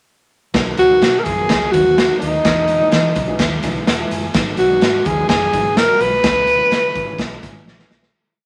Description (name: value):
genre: uptempo 1960s-style soul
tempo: 127 BPM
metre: 4/4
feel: straight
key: B major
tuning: A4 = 441 Hz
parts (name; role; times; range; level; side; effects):
- dark upright piano; accompaniment; 0.5-8.0 s; E3 to G#5; -30 LUFS; equal; none
- vintage muted fingered electric bass; bass; 0.5-8.1 s; E1 to E3; -29 LUFS; equal; none
- raw garage drum kit; drums; 0.5-8.1 s; hi-hat, kick drum, snare drum; -21 LUFS; equal; none
- breathy tenor saxophone; melody; 0.8-7.7 s; D#4 to B4; -17 LUFS; equal; none
room: moderate studio reverb, RT60 0.6 s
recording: none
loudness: -16 LUFS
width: mono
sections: 0.5-8.1 verse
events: upright piano fill 2.9-4.3; fade-out 6.2-8.1; drum fill 7.7-8.1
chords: 0.5 Bmaj7; 2.4 Emaj7; 4.3 G#m7; 6.2 C#m7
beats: | 0.54 1.02 1.49 1.97 | 2.45 2.92 3.40 3.87 | 4.34 4.82 5.29 5.76 | 6.24 6.71 7.18 7.66